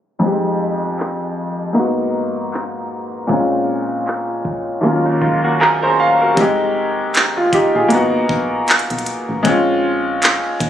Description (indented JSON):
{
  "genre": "contemporary R&B",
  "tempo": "78 BPM",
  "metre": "4/4",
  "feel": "swing 58% on 16ths",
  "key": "F phrygian",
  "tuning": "A4 = 440 Hz",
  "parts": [
    { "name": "clear grand piano", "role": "accompaniment", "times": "0.2-10.7 s", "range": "Eb2 to Bb5", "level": "-16 LUFS", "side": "left 1 dB", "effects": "none" },
    { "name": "trap drum kit", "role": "drums", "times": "1.0-10.7 s", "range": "handclaps, hi-hat, kick drum", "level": "-18 LUFS", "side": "right 1 dB", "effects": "none" },
    { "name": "direct-recorded clean electric guitar", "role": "arpeggios", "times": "4.8-6.3 s", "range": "Gb3 to Bb4", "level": "-22 LUFS", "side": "right 4 dB", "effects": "digital delay" },
    { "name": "solid FM bass", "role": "bass", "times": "6.4-10.7 s", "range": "F1 to Cb2", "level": "-28 LUFS", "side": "right 1 dB", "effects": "none" }
  ],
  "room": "light reverb, digital ambience",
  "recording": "recorded on a phone in the room, studio ambience, low-pass filter",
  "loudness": "-14 LUFS",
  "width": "side -10 dB against mid",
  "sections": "0.2-6.4 A section; 6.4-10.7 B section",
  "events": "filter sweep 0.2-6.4; grand piano fill 5.2-6.4",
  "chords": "0.2 Fm9; 1.8 Abm9; 3.3 Bbm9; 4.8 Ebm9; 6.4 Fm9; 7.9 Abm9; 9.4 Bbm9"
}